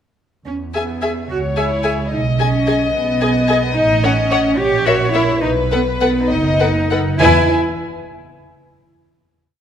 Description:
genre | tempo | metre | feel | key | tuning
quick classical-period movement for string orchestra | 64-74 BPM (dotted quarters) | 6/8 | rubato | unclear | A4 = 444 Hz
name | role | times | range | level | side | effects
dark chamber cello section | bass | 0.5-7.5 s | B3 to G4 | -19 LUFS | right 1 dB | none
dark chamber double bass section | bass | 0.5-7.5 s | F#1 to E2 | -20 LUFS | right 3 dB | none
warm chamber violin section | melody | 0.7-7.5 s | E5 to G#5 | -22 LUFS | left 6 dB | none
warm chamber viola section | accompaniment | 0.7-7.5 s | E4 to E5 | -22 LUFS | equal | none
warm chamber violin section | second line | 1.3-7.5 s | B4 to D#5 | -20 LUFS | left 4 dB | none
room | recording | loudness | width
moderate concert hall reverb, RT60 1.9 s | none | -14 LUFS | side -8 dB against mid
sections
0.5-7.2 A section; 7.2-8.9 final chord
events
none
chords
0.5 E; 1.3 C#m; 2.1 G#m/B; 3.8 F#m/A (rootless); 4.6 A#dim7; 5.4 B7; 7.2 N.C.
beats
| 0.45 1.29 | 2.11 2.94 | 3.76 4.58 | 5.42 6.30 | 7.20

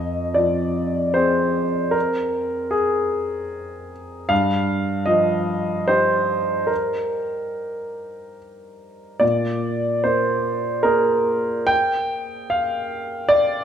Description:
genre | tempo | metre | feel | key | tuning
neoclassical minimalist piano | 68-78 BPM | 3/4 | rubato | unclear | A4 = 439 Hz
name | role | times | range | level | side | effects
clear grand piano | solo | 0.0-13.6 s | F2 to G5 | -19 LUFS | equal | none
room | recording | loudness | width
wet recital hall reverb, RT60 1.9 s | recorded in a church or concert hall | -19 LUFS | side -8 dB against mid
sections
0.0-13.6 A section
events
none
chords
0.0 Fm7; 4.3 Ebadd9/G; 9.2 Bb7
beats
0.35 1.16 | 1.95 2.74 3.52 | 4.31 5.08 5.88 | 6.70 7.54 8.38 | 9.22 10.04 10.84 | 11.70 12.52 13.32

